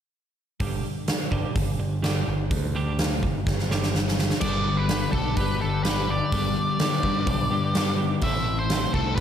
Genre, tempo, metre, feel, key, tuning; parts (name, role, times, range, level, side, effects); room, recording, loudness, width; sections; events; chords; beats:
quiet-loud alternative rock; 126 BPM; 4/4; straight; A4 = 440 Hz
twelve-string electric guitar; arpeggios; 0.6-9.2 s; G2 to A4; -31 LUFS; right 3 dB; harmonic tremolo
growling picked electric bass; bass; 0.6-9.2 s; G1 to G2; -28 LUFS; equal; overdrive
huge arena drum kit; drums; 0.6-9.2 s; crash cymbal, hi-hat, kick drum, snare drum; -26 LUFS; right 1 dB
octave-fuzz lead guitar; melody; 4.4-9.2 s; A4 to E5; -28 LUFS; equal; distortion, slapback echo
sludgy distorted guitar; riff; 4.4-9.2 s; G2 to A3; -29 LUFS; left 8 dB; overdrive
moderate lush hall reverb, RT60 1.9 s, studio ambience; big arena sound; -22 LUFS; side -9 dB against mid
0.6-4.4 A section; 4.4-9.2 B section
drum fill 3.5-4.4
0.6 G5; 4.4 G; 8.2 Am
| 0.61 1.09 1.57 2.04 | 2.52 3.00 3.47 3.95 | 4.43 4.90 5.38 5.86 | 6.33 6.81 7.28 7.76 | 8.23 8.71 9.19